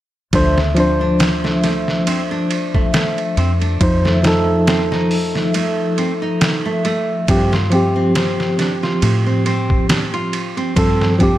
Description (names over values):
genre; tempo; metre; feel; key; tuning
trip hop; 69 BPM; 4/4; swing 55% on 16ths; unclear; A4 = 441 Hz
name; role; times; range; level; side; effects
bright tine electric piano; accompaniment; 0.3-11.4 s; F3 to C5; -17 LUFS; equal; harmonic tremolo, low-pass filter, tape echo
nylon-string guitar; arpeggios; 0.3-11.3 s; A3 to F4; -23 LUFS; right 1 dB; ping-pong delay
deep dub fingered electric bass; bass; 0.3-11.4 s; D2 to A2; -20 LUFS; equal; none
trip hop sampler-style drum kit; drums; 0.3-11.4 s; hi-hat, kick drum, ride cymbal, snare drum; -20 LUFS; equal; overdrive
room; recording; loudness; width
digital ambience; none; -14 LUFS; side -14 dB against mid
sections
0.3-11.4 A section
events
none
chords
0.3 Dm7; 3.8 F7; 7.3 G7sus4